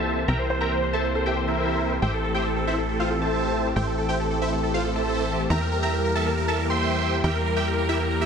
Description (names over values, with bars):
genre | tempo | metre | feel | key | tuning
trance | 138 BPM | 4/4 | straight | unclear | A4 = 438 Hz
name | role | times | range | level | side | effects
supersaw chords | melody | 0.0-8.3 s | E4 to C6 | -26 LUFS | right 1 dB | phaser, low-pass filter, dub echo
plucky unison lead | second line | 0.0-8.3 s | A4 to C6 | -32 LUFS | equal | ping-pong delay
tight sequencer bass | bass | 0.0-8.3 s | A1 to E2 | -28 LUFS | equal | none
lush unison pad | sustained chords | 0.1-8.3 s | E3 to G4 | -28 LUFS | left 1 dB | chorus
warm concert grand piano | second line | 0.5-1.9 s | A4 to C5 | -35 LUFS | equal | none
reverse cymbal | sound effects | 8.2-8.3 s | none | barely audible | none | none
room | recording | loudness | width
moderate huge ambient reverb, RT60 7.8 s | dense, heavily limited modern master | -22 LUFS | side -6 dB against mid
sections
0.0-8.3 A section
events
filter sweep on analog synth pad 0.0-8.3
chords
0.0 C7; 2.0 Am7; 5.5 Edim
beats
| 0.28 0.72 1.15 1.59 | 2.02 2.46 2.89 3.33 | 3.76 4.20 4.63 5.07 | 5.50 5.93 6.37 6.80 | 7.24 7.67 8.11